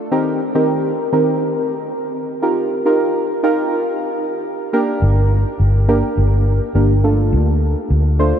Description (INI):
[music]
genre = pop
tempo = 104 BPM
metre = 4/4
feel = straight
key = G minor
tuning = A4 = 441 Hz
[part]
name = deep mellow chord stab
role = accompaniment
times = 0.1-8.4 s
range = Eb3 to C5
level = -17 LUFS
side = right 1 dB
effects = chorus
[part]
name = vintage muted fingered electric bass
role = bass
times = 5.0-8.3 s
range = G1 to D2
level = -14 LUFS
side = equal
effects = none
[sound]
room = wet huge ambient reverb, RT60 7.5 s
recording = dreamy mix soaked in reverb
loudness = -15 LUFS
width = side -8 dB against mid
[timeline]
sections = 0.0-4.7 A section; 4.7-8.4 B section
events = none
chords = 0.1 Cm7/Eb; 2.4 Ebadd9; 4.7 Gm; 7.0 Dm